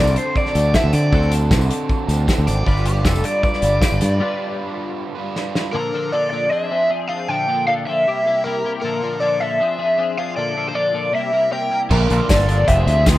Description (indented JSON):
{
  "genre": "indie rock",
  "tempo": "156 BPM",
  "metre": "4/4",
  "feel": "straight",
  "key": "unclear",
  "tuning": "A4 = 440 Hz",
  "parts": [
    { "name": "overdriven electric guitar", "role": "melody", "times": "0.0-13.0 s", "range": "G4 to G5", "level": "-19 LUFS", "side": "equal", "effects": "phaser" },
    { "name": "overdriven electric guitar", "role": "riff", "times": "0.0-5.7, 11.9-13.2 s", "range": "F2 to B4", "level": "-26 LUFS", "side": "right 6 dB", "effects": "lush chorus" },
    { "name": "twelve-string electric guitar", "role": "riff", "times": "0.0-13.2 s", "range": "Bb2 to B4", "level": "-26 LUFS", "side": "left 5 dB", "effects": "ensemble chorus" },
    { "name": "growling fingered electric bass", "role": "bass", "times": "0.0-4.2, 11.9-13.2 s", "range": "F1 to D3", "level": "-17 LUFS", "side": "equal", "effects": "overdrive" },
    { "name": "tambourine", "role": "percussion", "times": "0.1-4.1, 12.3-13.2 s", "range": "none", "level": "-36 LUFS", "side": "left 3 dB", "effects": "none" },
    { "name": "loose indie drum kit", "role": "drums", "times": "0.2-5.6, 11.9-13.2 s", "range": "crash cymbal, hi-hat, kick drum, snare drum", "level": "-20 LUFS", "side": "equal", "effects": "none" }
  ],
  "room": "light reverb",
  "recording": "rough home demo mix",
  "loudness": "-16 LUFS",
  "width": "side -15 dB against mid",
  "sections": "0.0-5.7 A section; 5.7-13.2 B section",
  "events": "overdriven electric guitar solo 0.0-5.7; break 4.2-5.7; drum fill 5.4-5.7",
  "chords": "0.0 D7; 2.7 G7; 5.7 Bbmaj7; 6.5 Fm6; 7.3 Bbmaj7; 8.1 C7; 8.8 Bbmaj7; 9.6 Fm6; 10.4 Bbmaj7; 11.1 C7; 11.9 Bbmaj7"
}